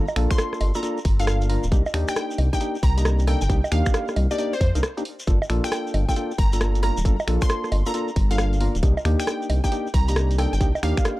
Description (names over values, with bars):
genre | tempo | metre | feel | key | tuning
UK garage, two-step garage | 135 BPM | 4/4 | swing 65% on 16ths | G minor | A4 = 440 Hz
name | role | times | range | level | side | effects
percussive organ stab | stabs | 0.0-11.2 s | Bb3 to Bb4 | -28 LUFS | equal | wide subtle chorus
dark detuned saw bass | bass | 0.0-10.9 s | D1 to F2 | -21 LUFS | equal | none
punchy analog drum machine | drums | 0.1-11.2 s | bongos, finger snaps, hi-hat, rim click | -28 LUFS | right 1 dB | none
shekere | percussion | 0.1-11.2 s | none | -40 LUFS | left 1 dB | none
glassy wavetable pluck | melody | 0.3-11.2 s | C5 to C6 | -30 LUFS | equal | chorus, tape echo
electronic kick drum | drums | 0.3-11.0 s | none | -21 LUFS | equal | none
room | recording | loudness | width
little or no reverb | dry, gritty hardware recording | -20 LUFS | side -18 dB against mid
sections
0.0-11.2 A section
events
none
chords
0.0 Gm7; 1.7 Cm7; 5.3 Gm7; 8.8 Cm7